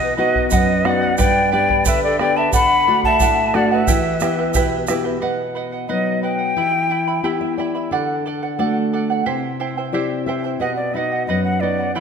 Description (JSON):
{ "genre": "andean folk, Andean ensemble", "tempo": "89 BPM", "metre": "2/4", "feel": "straight", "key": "unclear", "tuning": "A4 = 442 Hz", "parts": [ { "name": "hollow quena", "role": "melody", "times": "0.0-7.5, 10.6-12.0 s", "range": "D5 to B5", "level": "-19 LUFS", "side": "left 1 dB", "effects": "tape echo" }, { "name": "polished pan flute", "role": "second line", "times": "0.0-4.9 s", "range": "A4 to F#5", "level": "-23 LUFS", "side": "left 4 dB", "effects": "none" }, { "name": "charango", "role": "accompaniment", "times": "0.0-12.0 s", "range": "E4 to B5", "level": "-23 LUFS", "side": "right 5 dB", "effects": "none" }, { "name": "nylon-string guitar", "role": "accompaniment", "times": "0.0-12.0 s", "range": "F#2 to G5", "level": "-22 LUFS", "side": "left 2 dB", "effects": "none" }, { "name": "bombo", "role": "percussion", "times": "0.4-5.0 s", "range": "none", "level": "-23 LUFS", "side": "right 2 dB", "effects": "none" }, { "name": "egg shaker", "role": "percussion", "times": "0.5-5.0 s", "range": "none", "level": "-28 LUFS", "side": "right 7 dB", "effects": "none" } ], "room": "wet scoring stage reverb, RT60 1.6 s", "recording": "none", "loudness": "-16 LUFS", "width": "side -6 dB against mid", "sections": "0.0-5.2 A section; 5.2-10.6 B section; 10.6-12.0 C section", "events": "nylon-string guitar fill 6.9-7.9, 9.6-10.6", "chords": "0.0 B; 1.2 G; 2.5 D; 3.9 Em; 5.2 B; 6.6 Em; 7.9 D; 9.3 C; 10.6 B" }